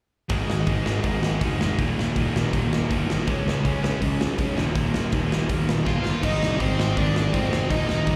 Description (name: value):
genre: punk rock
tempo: 162 BPM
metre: 4/4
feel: straight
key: unclear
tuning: A4 = 439 Hz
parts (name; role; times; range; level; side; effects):
- biting overdriven guitar; riff; 0.3-8.2 s; Eb2 to Db4; -31 LUFS; equal; none
- sludgy distorted guitar; riff; 0.3-8.2 s; Eb2 to Db4; -32 LUFS; equal; overdrive, slapback echo
- fuzz picked electric bass; bass; 0.3-8.2 s; Eb1 to F2; -28 LUFS; equal; overdrive
- big rock drum kit; drums; 0.3-8.2 s; crash cymbal, hi-hat, kick drum, snare drum; -29 LUFS; equal; none
- nasal lead guitar with a parked wah; melody; 5.9-8.2 s; C4 to F5; -29 LUFS; equal; overdrive, slapback echo, delay
room: light reverb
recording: live gig heard through the venue's PA, recital hall reverb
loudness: -23 LUFS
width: mono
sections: 0.3-6.2 A section; 6.2-8.2 B section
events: drum fill 5.9-6.2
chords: 0.3 Ab5; 1.8 Eb; 3.3 Db5; 4.6 Eb; 6.2 Ab